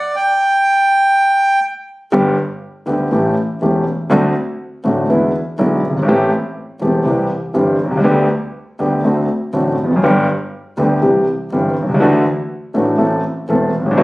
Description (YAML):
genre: tango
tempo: 121 BPM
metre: 4/4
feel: rubato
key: G major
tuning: A4 = 441 Hz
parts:
  - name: bandoneon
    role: melody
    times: 0.0-1.6 s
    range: D5 to G5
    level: -11 LUFS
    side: right 1 dB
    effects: none
  - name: warm concert grand piano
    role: accompaniment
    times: 2.1-14.0 s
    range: E1 to A4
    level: -14 LUFS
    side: equal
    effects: none
  - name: clear double bass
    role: bass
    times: 2.1-14.0 s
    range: E1 to E2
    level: -22 LUFS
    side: right 1 dB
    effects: none
room: light reverb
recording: recorded on a phone in the room, studio reverb, compression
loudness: -13 LUFS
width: side -21 dB against mid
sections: 0.0-2.1 A section; 2.1-14.0 B section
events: none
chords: 0.1 N.C.; 2.1 G; 3.1 A7; 4.1 D7; 5.1 E7; 6.1 Am7; 7.1 C; 8.0 G/D; 9.0 D7; 10.0 G; 11.0 C; 12.0 Dadd9; 13.0 Am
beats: | 0.13 0.63 1.13 1.63 | 2.13 2.62 3.12 3.62 | 4.11 4.60 5.09 5.59 | 6.08 6.57 7.06 7.55 | 8.05 8.54 9.04 9.53 | 10.03 10.53 11.02 11.52 | 12.01 12.50 12.99 13.48 | 13.97